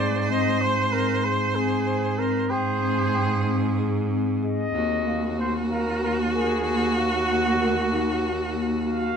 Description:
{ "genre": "contemporary instrumental, chamber music in an uneven meter", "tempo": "190 BPM (eighths)", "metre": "7/8", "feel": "straight", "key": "unclear", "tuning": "A4 = 440 Hz", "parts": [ { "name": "warm flugelhorn", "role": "melody", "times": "0.0-9.2 s", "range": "Gb4 to F5", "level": "-28 LUFS", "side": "right 1 dB", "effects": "none" }, { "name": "bright viola", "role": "second line", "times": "0.0-9.2 s", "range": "Gb4 to C5", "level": "-28 LUFS", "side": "right 1 dB", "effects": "none" }, { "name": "marimba with soft mallets", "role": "arpeggios", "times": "0.0-9.1 s", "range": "Bb3 to G5", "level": "-26 LUFS", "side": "left 4 dB", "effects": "none" }, { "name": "rich cello", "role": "bass", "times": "0.0-9.2 s", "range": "Eb2 to Ab2", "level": "-27 LUFS", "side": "right 4 dB", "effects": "none" } ], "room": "light reverb", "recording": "dark, warm production", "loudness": "-21 LUFS", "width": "side -7 dB against mid", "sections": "0.0-4.7 A section; 4.7-9.2 B section", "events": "none", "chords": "0.0 Ab; 4.7 Ebmadd9", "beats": "| 0.29 0.61 0.92 1.24 1.55 1.86 2.18 | 2.50 2.81 3.13 3.45 3.77 4.10 4.42 | 4.74 5.06 5.38 5.70 6.01 6.33 6.65 | 6.97 7.28 7.60 7.91 8.23 8.54 8.85 | 9.16" }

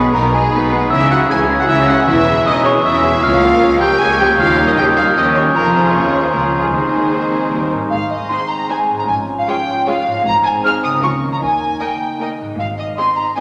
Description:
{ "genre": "cinematic", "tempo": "154 BPM", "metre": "3/4", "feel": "straight", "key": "Ab major from 3.2 s", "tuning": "A4 = 439 Hz", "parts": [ { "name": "glockenspiel with rubber mallets", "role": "melody", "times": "0.0-7.7 s", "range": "G#5 to G#6", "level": "-19 LUFS", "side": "equal", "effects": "none" }, { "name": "rich chamber violin section", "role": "melody", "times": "0.0-13.4 s", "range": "E4 to F6", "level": "-27 LUFS", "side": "equal", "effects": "none" }, { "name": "rich chamber violin section", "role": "second line", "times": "0.0-13.4 s", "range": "G#4 to G#5", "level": "-24 LUFS", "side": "equal", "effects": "none" }, { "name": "warm chamber viola section", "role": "accompaniment", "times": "0.0-13.4 s", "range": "E3 to F4", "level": "-24 LUFS", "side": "equal", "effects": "none" }, { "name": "dark French horn section", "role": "sustained chords", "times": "0.0-13.4 s", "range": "F3 to Ab4", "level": "-23 LUFS", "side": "equal", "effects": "none" }, { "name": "concert harp", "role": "arpeggios", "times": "0.0-13.4 s", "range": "Ab2 to B5", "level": "-27 LUFS", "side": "equal", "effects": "none" }, { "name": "dark tuba", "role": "bass", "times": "0.0-7.7 s", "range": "E1 to Eb2", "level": "-31 LUFS", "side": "equal", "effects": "none" }, { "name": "rich chamber cello section", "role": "bass", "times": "0.0-12.9 s", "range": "Db2 to Eb3", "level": "-24 LUFS", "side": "equal", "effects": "none" }, { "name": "rich chamber double bass section", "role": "bass", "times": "0.0-12.9 s", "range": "E1 to Eb2", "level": "-28 LUFS", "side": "equal", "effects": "none" }, { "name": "mellow hollow wooden flute", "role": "second line", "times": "7.9-13.4 s", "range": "Eb5 to F6", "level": "-20 LUFS", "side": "equal", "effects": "none" } ], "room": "wet scoring stage reverb, RT60 1.6 s", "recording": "none", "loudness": "-15 LUFS", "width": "mono", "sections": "0.0-7.9 A section; 7.9-13.4 B section", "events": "none", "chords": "0.0 G#m/B; 0.9 C#m; 2.1 C#m/E; 3.2 Bbm/Db; 4.4 Eb9; 5.6 Fm; 6.3 Bbm7/Db; 6.7 Ab/Eb; 7.5 Eb; 7.9 Ab; 11.0 Bbm/Db; 11.4 Eb; 12.6 Ab", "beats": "0.14 0.53 | 0.92 1.30 1.69 | 2.08 2.46 2.85 | 3.24 3.62 4.01 | 4.39 4.78 5.17 | 5.55 5.94 6.33 | 6.73 7.12 7.52 | 7.91 8.30 8.69 | 9.09 9.47 9.86 | 10.25 10.63 11.02 | 11.41 11.80 12.20 | 12.59 12.98 13.37" }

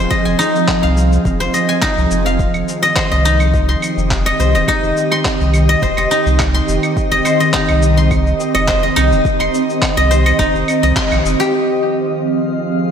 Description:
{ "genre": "organic downtempo", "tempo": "105 BPM", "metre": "4/4", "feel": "straight", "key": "unclear", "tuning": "A4 = 440 Hz", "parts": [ { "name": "ethereal airy pad", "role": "sustained chords", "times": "0.0-12.9 s", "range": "Eb3 to Eb5", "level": "-18 LUFS", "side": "right 1 dB", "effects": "ensemble chorus, built-in reverb, vintage 12-bit sampler grit, sidechain pumping" }, { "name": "guzheng", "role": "arpeggios", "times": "0.0-12.9 s", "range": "Eb4 to C6", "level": "-17 LUFS", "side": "left 2 dB", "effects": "analog delay" }, { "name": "warm sub bass", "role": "bass", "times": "0.0-11.4 s", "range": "Eb1 to C2", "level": "-16 LUFS", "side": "equal", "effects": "sidechain pumping" }, { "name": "electronic kick drum", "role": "drums", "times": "0.1-11.1 s", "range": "none", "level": "-21 LUFS", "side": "equal", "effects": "overdrive" }, { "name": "electronic shaker, handclaps and claves", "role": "drums", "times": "0.1-12.9 s", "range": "none", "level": "-24 LUFS", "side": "equal", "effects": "low-pass filter on perc, low-pass filter on snare" }, { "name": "drifting glass-harmonics texture", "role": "texture", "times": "3.6-12.9 s", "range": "Eb5 to F5", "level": "-26 LUFS", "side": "right 4 dB", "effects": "chorus, built-in reverb" } ], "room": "wet lush hall reverb, RT60 2.5 s", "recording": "dreamy mix soaked in reverb", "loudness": "-12 LUFS", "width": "side -8 dB against mid", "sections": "0.0-11.5 A section; 11.5-12.9 B section", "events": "band accent 11.0", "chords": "0.0 Fm7; 2.4 Cm; 11.5 Fm7", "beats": "| 0.11 0.68 1.25 1.82 | 2.40 2.97 3.54 4.11 | 4.68 5.25 5.82 6.39 | 6.97 7.54 8.11 8.68 | 9.25 9.82 10.39 10.97 | 11.54 12.11 12.68" }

